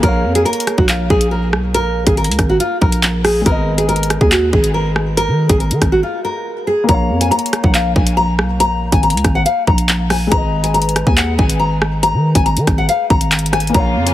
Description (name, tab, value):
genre	hip hop, drill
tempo	140 BPM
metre	4/4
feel	half-time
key	Bb phrygian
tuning	A4 = 441 Hz
part	nylon-string guitar	melody	0.0-14.1 s	F4 to Bb5	-17 LUFS	left 1 dB	digital delay
part	dark grand piano	accompaniment	0.0-14.1 s	Ab3 to F5	-25 LUFS	left 2 dB	none
part	growling 808-style bass	bass	0.0-14.1 s	Ab1 to Eb3	-17 LUFS	equal	none
part	drill drum kit	drums	0.0-14.1 s	handclaps, hi-hat, kick drum, rim click	-16 LUFS	equal	none
part	dark symphonic string section	sustained chords	13.7-14.1 s	Db3 to F4	-22 LUFS	equal	none
room	light reverb, small room ambience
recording	heavily compressed radio sound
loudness	-12 LUFS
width	side -13 dB against mid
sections	0.0-6.9 A section; 6.9-14.1 B section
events	break 6.0-6.9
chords	0.0 Bbm; 3.5 Abm; 6.9 Bbm; 10.3 Abm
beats	| 0.03 0.46 0.89 1.32 | 1.75 2.17 2.60 3.03 | 3.46 3.89 4.32 4.75 | 5.17 5.60 6.03 6.46 | 6.89 7.32 7.75 8.17 | 8.60 9.03 9.46 9.89 | 10.32 10.74 11.17 11.60 | 12.03 12.46 12.89 13.32 | 13.74